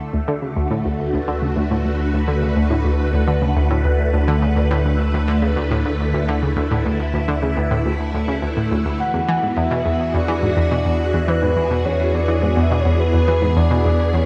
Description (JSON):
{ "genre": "ambient, sequencer-driven space music", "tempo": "105 BPM", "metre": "4/4", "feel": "straight", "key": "D lydian", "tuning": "A4 = 440 Hz", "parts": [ { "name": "phased string machine", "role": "sustained chords", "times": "0.0-14.3 s", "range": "D3 to B4", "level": "-24 LUFS", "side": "equal", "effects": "ensemble chorus, phaser" }, { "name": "warm sub bass", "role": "bass", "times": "0.0-14.3 s", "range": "D2 to E2", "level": "-24 LUFS", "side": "equal", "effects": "none" }, { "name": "analog pluck", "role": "riff", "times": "0.1-14.2 s", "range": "D2 to E3", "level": "-24 LUFS", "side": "equal", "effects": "chorus, delay" }, { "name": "soft octave-layered synth lead", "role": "melody", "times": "9.0-14.3 s", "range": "B4 to F#5", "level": "-24 LUFS", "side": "equal", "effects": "chorus, delay" } ], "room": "moderate plate reverb, RT60 2.8 s", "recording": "dreamy mix soaked in reverb", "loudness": "-19 LUFS", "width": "mono", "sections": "0.0-14.3 A section", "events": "none", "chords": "0.0 D6; 9.0 Eadd9" }